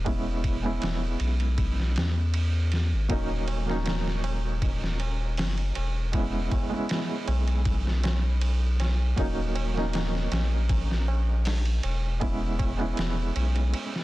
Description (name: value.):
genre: trip hop.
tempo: 79 BPM.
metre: 4/4.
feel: straight.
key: unclear.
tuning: A4 = 439 Hz.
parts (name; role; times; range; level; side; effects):
felt-muted upright piano; accompaniment; 0.0-14.0 s; Gb3 to E4; -32 LUFS; right 2 dB; tremolo, low-pass filter, tape echo.
round analog bass; bass; 0.0-13.7 s; Eb1 to E2; -26 LUFS; equal; none.
trip hop sampler-style drum kit; drums; 0.1-14.0 s; hi-hat, kick drum, ride cymbal, snare drum; -31 LUFS; equal; none.
tabla; percussion; 3.1-14.0 s; none; -42 LUFS; right 5 dB; none.
room: little or no reverb.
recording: dense, heavily limited modern master.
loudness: -24 LUFS.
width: side -17 dB against mid.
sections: 0.0-14.0 A section.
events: break 13.7-14.0.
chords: 0.1 E6; 3.1 Ebm7; 6.1 E6; 9.2 Ebm7; 12.2 E6.